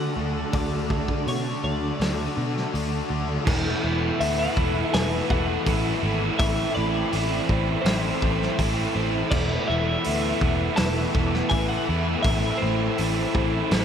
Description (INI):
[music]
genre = rock, shoegaze and dream pop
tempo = 82 BPM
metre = 4/4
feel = straight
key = unclear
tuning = A4 = 441 Hz
[part]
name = twelve-string electric guitar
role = melody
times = 0.0-13.8 s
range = C5 to A5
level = -32 LUFS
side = left 1 dB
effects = tape echo
[part]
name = dark analog pad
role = sustained chords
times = 0.0-13.8 s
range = D4 to B5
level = -33 LUFS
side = left 1 dB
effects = chorus
[part]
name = distorted electric guitar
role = riff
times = 0.0-3.4 s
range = D3 to D4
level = -35 LUFS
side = equal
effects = overdrive
[part]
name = overdriven electric guitar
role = riff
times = 0.0-13.8 s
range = E2 to F#4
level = -28 LUFS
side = right 9 dB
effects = reverse reverb
[part]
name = overdriven semi-hollow guitar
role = riff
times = 0.0-13.8 s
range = E2 to F#4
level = -29 LUFS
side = left 9 dB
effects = ensemble chorus
[part]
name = picked electric bass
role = bass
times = 0.0-13.8 s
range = E1 to B2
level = -27 LUFS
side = equal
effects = none
[part]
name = loose indie drum kit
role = drums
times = 0.5-13.8 s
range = crash cymbal, hi-hat, kick drum, snare drum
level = -28 LUFS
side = equal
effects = none
[sound]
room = moderate huge ambient reverb, RT60 4.8 s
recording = dreamy mix soaked in reverb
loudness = -21 LUFS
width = side -8 dB against mid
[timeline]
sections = 0.0-3.5 A section; 3.5-13.8 B section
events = none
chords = 0.0 D; 3.5 Esus4; 6.4 Amadd9; 9.3 Esus4; 12.3 Amadd9